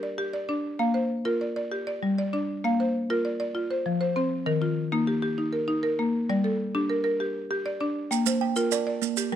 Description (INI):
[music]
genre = southern african traditional, mbira-style interlocking cycle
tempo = 131 BPM (dotted quarters)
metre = 12/8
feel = straight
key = Bb major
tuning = A4 = 440 Hz
[part]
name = buzzing marimba with medium mallets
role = arpeggios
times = 0.0-9.4 s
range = Eb3 to G5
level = -25 LUFS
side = left 1 dB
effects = none
[part]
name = maracas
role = percussion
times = 8.1-9.3 s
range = none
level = -31 LUFS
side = right 14 dB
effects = none
[part]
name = kalimba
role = arpeggios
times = 8.3-9.4 s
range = Bb3 to G5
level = -28 LUFS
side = right 12 dB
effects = none
[sound]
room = light reverb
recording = close, detailed microphones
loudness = -24 LUFS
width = side -10 dB against mid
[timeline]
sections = 0.0-8.1 A section; 8.1-9.4 A section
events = none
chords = 0.0 G5; 0.8 Bb; 1.7 G5; 2.6 Bb; 3.6 F5; 4.5 Eb; 6.3 Gm; 8.1 Bb